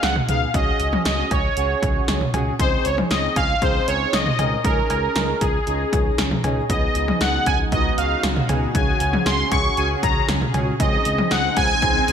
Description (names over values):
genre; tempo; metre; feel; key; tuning
synth-pop; 117 BPM; 4/4; straight; unclear; A4 = 440 Hz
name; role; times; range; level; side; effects
analog synth brass; melody; 0.0-12.1 s; Ab4 to Db6; -22 LUFS; equal; chorus, shimmer reverb, digital delay
analog synth brass; accompaniment; 0.0-12.1 s; Cb4 to Bb4; -28 LUFS; equal; chorus, shimmer reverb
smooth synth bass; bass; 0.0-12.1 s; Db2; -26 LUFS; equal; none
punchy analog drum machine; drums; 0.0-12.1 s; cowbell, hi-hat, kick drum, snare drum, toms; -22 LUFS; equal; gated reverb
sweeping resonant pad; sustained chords; 6.7-12.1 s; Db3 to Ab4; -28 LUFS; equal; chorus, shimmer reverb
swell; sound effects; 11.3-12.1 s; none; -31 LUFS; right 3 dB; none
room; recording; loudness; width
moderate plate reverb, RT60 1.4 s; bright 1980s-style digital production; -18 LUFS; side -8 dB against mid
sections
0.0-12.1 A section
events
swell 11.3-12.1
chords
0.0 Cb6/Db; 0.5 Gbsus2/Db; 2.6 Ab/Db; 4.6 Dbsus2; 6.7 Cb6/Db; 8.7 Gbsus2/Db; 10.8 Ab/Db